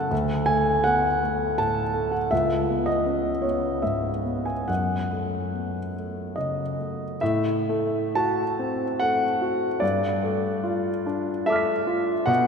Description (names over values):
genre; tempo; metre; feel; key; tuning
classical, impressionist solo piano; 62-82 BPM; 3/4; rubato; F# minor, A dorian from 7.2 s; A4 = 438 Hz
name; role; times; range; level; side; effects
clear concert grand piano; solo; 0.0-12.5 s; C#2 to B6; -22 LUFS; equal; none
room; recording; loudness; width
wet church reverb, RT60 3.7 s; none; -22 LUFS; side -6 dB against mid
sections
0.0-7.2 A section; 7.2-12.5 B section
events
none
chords
0.1 D; 2.3 C#5; 4.7 F#madd11; 7.2 Am6; 9.8 G9